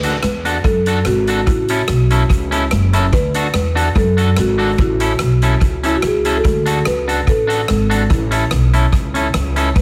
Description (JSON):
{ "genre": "ska", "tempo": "145 BPM", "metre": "4/4", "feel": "swing 53% on 8ths", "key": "A major", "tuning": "A4 = 440 Hz", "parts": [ { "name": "marimba with medium mallets", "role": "melody", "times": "0.0-9.8 s", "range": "E4 to B4", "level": "-22 LUFS", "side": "equal", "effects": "tape echo, plate reverb" }, { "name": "electric guitar at the edge of break-up", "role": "accompaniment", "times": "0.0-9.7 s", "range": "C#4 to A4", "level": "-22 LUFS", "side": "equal", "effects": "none" }, { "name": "upright bass", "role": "bass", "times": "0.0-9.8 s", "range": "F#1 to F#2", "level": "-19 LUFS", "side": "equal", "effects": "none" }, { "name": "street-band drum kit", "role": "drums", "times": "0.0-9.8 s", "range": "hi-hat, kick drum, rim click", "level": "-22 LUFS", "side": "equal", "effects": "tape echo" } ], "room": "moderate large studio reverb, RT60 1.0 s", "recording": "heavily compressed radio sound", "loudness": "-16 LUFS", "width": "mono", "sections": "0.0-9.8 A section", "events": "none", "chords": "0.0 D; 1.5 A; 3.1 D; 4.8 A; 6.4 D; 8.1 A", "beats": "0.23 0.64 1.06 | 1.47 1.89 2.30 2.72 | 3.13 3.55 3.96 4.38 | 4.79 5.20 5.62 6.03 | 6.45 6.86 7.28 7.69 | 8.11 8.52 8.94 9.35 | 9.76" }